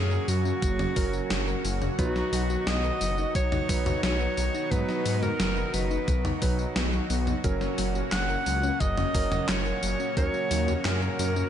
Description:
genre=synthwave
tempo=88 BPM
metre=4/4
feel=straight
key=unclear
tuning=A4 = 440 Hz
part: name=breathy alto saxophone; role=melody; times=0.0-11.5 s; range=F#4 to F#5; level=-31 LUFS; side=right 1 dB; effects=tape echo
part: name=lush unison pad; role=sustained chords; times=0.0-11.5 s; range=A#2 to F#4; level=-34 LUFS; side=equal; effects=chorus, sidechain pumping
part: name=thumb-piano-like synth pluck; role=arpeggios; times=0.0-11.4 s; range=F#3 to F#5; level=-35 LUFS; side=left 2 dB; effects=chorus, ping-pong delay
part: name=warm electric grand piano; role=stabs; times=0.0-11.5 s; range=F#3 to B4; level=-35 LUFS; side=right 4 dB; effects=none
part: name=wide detuned saw bass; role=bass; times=0.0-11.4 s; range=F#1 to G#2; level=-29 LUFS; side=equal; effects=chorus
part: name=gated 80s digital drum machine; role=drums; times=0.1-11.5 s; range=handclaps, hi-hat, snare drum, tambourine, toms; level=-32 LUFS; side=equal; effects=gated reverb, gated reverb snare
part: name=electronic kick drum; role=drums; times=0.6-10.3 s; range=none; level=-28 LUFS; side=equal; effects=none
room=light reverb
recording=nothing above 11.0 kHz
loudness=-24 LUFS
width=side -9 dB against mid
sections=0.0-11.5 A section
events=none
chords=0.0 F#; 2.0 B; 7.4 F#

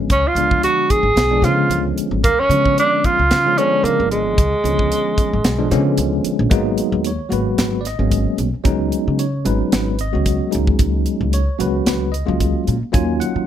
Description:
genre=electric jazz fusion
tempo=112 BPM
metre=4/4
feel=swing 55% on 16ths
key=unclear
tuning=A4 = 440 Hz
part: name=bell-like tine electric piano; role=accompaniment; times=0.0-13.5 s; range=D3 to G#5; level=-20 LUFS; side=left 1 dB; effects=medium stereo tremolo
part: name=upright bass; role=bass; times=0.0-13.5 s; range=G#1 to D#3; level=-20 LUFS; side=equal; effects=none
part: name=breathy tenor saxophone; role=melody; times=0.1-5.9 s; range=G#3 to G#4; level=-16 LUFS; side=right 2 dB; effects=none
part: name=crisp fusion drum kit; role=drums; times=0.1-13.3 s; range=hi-hat, kick drum, snare drum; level=-20 LUFS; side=equal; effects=none
room=light reverb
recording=none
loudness=-15 LUFS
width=side -10 dB against mid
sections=0.0-6.5 A section; 6.5-13.5 B section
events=none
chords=0.0 C#7b9; 6.5 G#m9; 8.7 C#9sus4; 10.5 F#69/C#; 12.9 D#m9

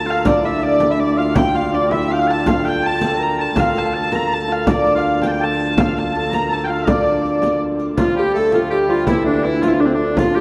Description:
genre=medieval dance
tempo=163 BPM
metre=3/4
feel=straight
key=D minor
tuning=A4 = 440 Hz
part: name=dark hurdy-gurdy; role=melody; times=0.0-10.4 s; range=C4 to Bb5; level=-21 LUFS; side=equal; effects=none
part: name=edgy shawm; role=second line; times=0.0-10.4 s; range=D4 to Bb5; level=-28 LUFS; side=equal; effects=tape echo
part: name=hammered dulcimer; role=second line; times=0.0-10.4 s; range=D3 to Bb4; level=-23 LUFS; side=equal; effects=none
part: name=warm viola da gamba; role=drone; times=0.0-10.4 s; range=D2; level=-28 LUFS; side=equal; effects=none
part: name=riq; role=percussion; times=0.2-10.4 s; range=none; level=-29 LUFS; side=equal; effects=none
part: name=frame drum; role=percussion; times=0.3-10.4 s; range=none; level=-24 LUFS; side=equal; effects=none
room=wet church reverb, RT60 2.8 s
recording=dreamy mix soaked in reverb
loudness=-17 LUFS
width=mono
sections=0.0-8.0 A section; 8.0-10.4 B section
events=none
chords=none

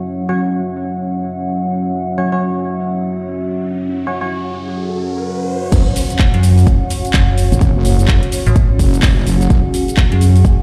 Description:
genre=bass house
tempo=127 BPM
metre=4/4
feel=swing 61% on 16ths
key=unclear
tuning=A4 = 435 Hz
part: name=dark analog pad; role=sustained chords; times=0.0-10.6 s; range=F#3 to E5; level=-24 LUFS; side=equal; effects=chorus, sidechain pumping
part: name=percussive organ stab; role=stabs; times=0.0-5.7 s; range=F#3 to C#5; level=-26 LUFS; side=equal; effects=lush chorus, sidechain pumping, tape echo
part: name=warbly tape-like pad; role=texture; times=0.0-10.6 s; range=C#4 to F#5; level=-27 LUFS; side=equal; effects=chorus, built-in reverb, phaser, sidechain pumping
part: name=riser and impact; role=sound effects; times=3.4-7.6 s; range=none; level=-28 LUFS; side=equal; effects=none
part: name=wobble bass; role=bass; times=5.7-9.6 s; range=F#1 to G#1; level=-16 LUFS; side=equal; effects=chorus, tube saturation, sidechain pumping
part: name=electronic kick drum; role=drums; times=5.7-10.6 s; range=none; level=-15 LUFS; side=equal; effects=studio ambience
part: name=house drum kit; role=drums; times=5.7-10.6 s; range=crash cymbal, handclaps, hi-hat, shaker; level=-25 LUFS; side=equal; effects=low-pass filter on hats, studio ambience, low-pass filter on cymbals, low-pass filter on perc, low-pass filter on snare
part: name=metallic FM bass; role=bass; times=6.3-10.4 s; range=F#1 to F#2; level=-12 LUFS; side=equal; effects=overdrive, sidechain pumping
room=light reverb, digital ambience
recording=played on a big sound system in a bare room, large studio reverb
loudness=-15 LUFS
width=mono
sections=0.0-5.7 A section; 5.7-10.6 B section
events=riser 3.4-5.7; drop 5.7-10.6; impact 5.7-7.6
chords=0.0 F#5

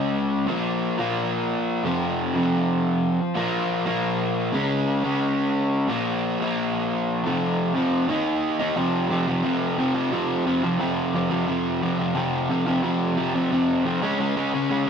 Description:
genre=punk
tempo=177 BPM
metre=4/4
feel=straight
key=unclear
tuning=A4 = 440 Hz
part: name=crunchy overdriven guitar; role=solo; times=0.0-14.9 s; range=F2 to Eb4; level=-21 LUFS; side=equal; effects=none
room=moderate studio reverb, RT60 0.5 s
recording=rough rehearsal-room recording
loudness=-21 LUFS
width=side -7 dB against mid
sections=0.0-8.8 A section; 8.8-14.2 B section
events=none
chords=0.5 Bb5; 1.8 F5; 3.4 Bb5; 4.5 Db5; 5.9 Bb5; 7.2 F5; 8.1 Eb5; 8.8 F5; 14.0 Db5

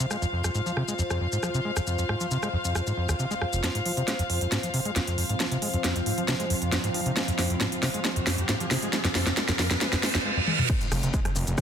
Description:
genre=driving peak-time techno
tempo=136 BPM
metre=4/4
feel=straight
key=F minor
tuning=A4 = 441 Hz
part: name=overdriven acid bass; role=riff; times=0.0-11.6 s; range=F1 to Ab3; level=-29 LUFS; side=equal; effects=distortion, sidechain pumping, tape echo
part: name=techno drum kit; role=drums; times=0.0-11.6 s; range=crash cymbal, hi-hat, rim click, shaker, snare drum, toms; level=-28 LUFS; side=equal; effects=sidechain pumping on hats, sidechain pumping on perc, sidechain pumping on toms, sidechain pumping on cymbals
part: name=warm studio string section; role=texture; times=0.0-10.3 s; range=F4 to F5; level=-32 LUFS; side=left 2 dB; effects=sidechain pumping
part: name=deep dark ambient pad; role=drone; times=4.7-11.6 s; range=F3 to C4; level=-34 LUFS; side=right 2 dB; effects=chorus, built-in reverb, sidechain pumping
part: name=riser, reverse cymbal and impact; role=sound effects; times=5.6-11.6 s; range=none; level=-33 LUFS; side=right 2 dB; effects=none
part: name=electronic kick drum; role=drums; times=10.7-11.6 s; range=none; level=-27 LUFS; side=equal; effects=none
part: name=gritty driven synth bass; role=bass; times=10.9-11.6 s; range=F1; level=-28 LUFS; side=equal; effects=distortion, sidechain pumping
room=moderate digital room reverb, RT60 1.0 s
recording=dense, heavily limited modern master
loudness=-24 LUFS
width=side -8 dB against mid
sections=0.0-3.6 A section; 3.6-10.7 B section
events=build-up 3.6-10.7; drum fill 3.6-10.3, 10.5; filter sweep on acid bass 3.6-10.7; riser 5.6-10.3; reverse cymbal 9.8-10.7; impact 10.7-11.6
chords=0.0 F5

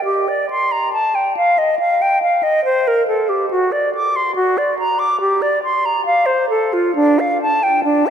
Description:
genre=classical, baroque-style fantasia for unaccompanied flute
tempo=70 BPM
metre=4/4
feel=rubato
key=unclear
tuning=A4 = 440 Hz
part: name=silver concert flute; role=solo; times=0.0-8.1 s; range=D4 to D6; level=-14 LUFS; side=equal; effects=none
room=wet cathedral reverb, RT60 4.6 s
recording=none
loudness=-14 LUFS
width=side -8 dB against mid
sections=0.0-8.1 A section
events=none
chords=none

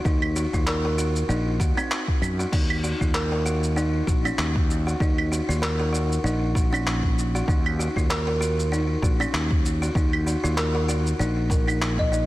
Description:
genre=organic downtempo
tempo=97 BPM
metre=4/4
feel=swing 56% on 16ths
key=Eb minor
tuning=A4 = 439 Hz
part: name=buzzing kalimba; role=arpeggios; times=0.0-12.3 s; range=C4 to Eb5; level=-27 LUFS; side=equal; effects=digital delay
part: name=sustaining fretless electric bass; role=bass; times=0.1-12.3 s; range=Bb1 to Gb2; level=-25 LUFS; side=equal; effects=none
part: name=dusty soul sampler-style drum kit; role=drums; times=0.1-12.3 s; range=claves, crash cymbal, handclaps, shaker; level=-30 LUFS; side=right 1 dB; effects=none
part: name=electronic kick drum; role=drums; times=0.1-12.1 s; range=none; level=-24 LUFS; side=equal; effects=none
room=light reverb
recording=dense, heavily limited modern master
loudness=-21 LUFS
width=side -17 dB against mid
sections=0.0-12.3 A section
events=none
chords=0.0 Ebm

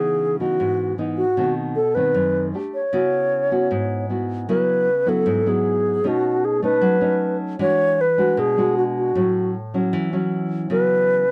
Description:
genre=bossa nova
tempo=154 BPM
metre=4/4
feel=straight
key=C# minor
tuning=A4 = 440 Hz
part: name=mellow alto flute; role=melody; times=0.0-11.3 s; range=F#4 to C#5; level=-21 LUFS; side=equal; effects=none
part: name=nylon-string guitar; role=accompaniment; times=0.0-11.3 s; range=F#2 to G4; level=-25 LUFS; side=equal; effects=none
room=light reverb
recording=dry, close 1970s-style studio recording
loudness=-20 LUFS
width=mono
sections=0.0-4.5 A section; 4.5-11.3 B section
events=none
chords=0.0 C#m9; 1.4 B7b9; 2.5 Aadd11; 2.9 C#m7; 6.0 B9; 7.6 E9; 9.2 A6; 10.7 C#m7

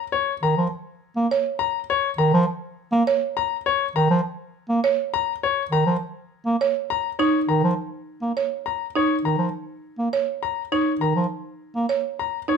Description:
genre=classical, minimalist pattern music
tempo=102 BPM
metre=3/4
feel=straight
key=unclear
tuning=A4 = 439 Hz
part: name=bright grand piano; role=melody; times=0.0-12.6 s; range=Db5 to Bb5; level=-24 LUFS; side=left 12 dB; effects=none
part: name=warm bass clarinet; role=accompaniment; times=0.4-11.9 s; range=Eb3 to Bb3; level=-21 LUFS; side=right 2 dB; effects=none
part: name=buzzing marimba with medium hard mallets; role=arpeggios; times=1.3-12.6 s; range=Eb4 to Db5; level=-23 LUFS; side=right 5 dB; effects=none
room=moderate large studio reverb, RT60 0.8 s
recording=minimal, uncompressed stereo recording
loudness=-21 LUFS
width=side -6 dB against mid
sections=0.0-12.6 A section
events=none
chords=0.0 Ebsus2

